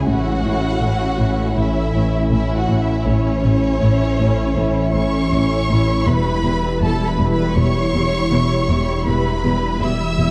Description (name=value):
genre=cinematic, hybrid orchestral and electronic film score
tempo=80 BPM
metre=4/4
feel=straight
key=unclear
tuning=A4 = 439 Hz
part: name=warm symphonic violin section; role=melody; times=0.0-10.3 s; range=C#5 to E6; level=-28 LUFS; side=equal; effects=none
part: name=clear symphonic violin section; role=second line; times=0.0-10.3 s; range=C#4 to E5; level=-28 LUFS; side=equal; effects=none
part: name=warm symphonic viola section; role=accompaniment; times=0.0-10.3 s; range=G3 to E4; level=-26 LUFS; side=equal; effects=none
part: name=ethereal airy pad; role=sustained chords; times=0.0-10.3 s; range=E3 to E5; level=-28 LUFS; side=equal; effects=ensemble chorus, built-in reverb, phaser
part: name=dark detuned saw bass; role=bass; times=0.0-10.3 s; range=E1 to A1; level=-24 LUFS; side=equal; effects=none
part: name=rich symphonic double bass section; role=bass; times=0.1-10.3 s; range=E1 to A1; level=-25 LUFS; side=equal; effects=none
part: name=warm symphonic cello section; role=bass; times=0.1-10.3 s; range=E2 to A2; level=-26 LUFS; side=equal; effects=none
room=moderate scoring stage reverb, RT60 2.0 s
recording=dark, warm production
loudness=-18 LUFS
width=mono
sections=0.0-10.3 A section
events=none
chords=0.1 A; 6.1 Em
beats=| 0.07 0.82 1.57 2.32 | 3.07 3.82 4.57 5.32 | 6.07 6.82 7.57 8.32 | 9.07 9.82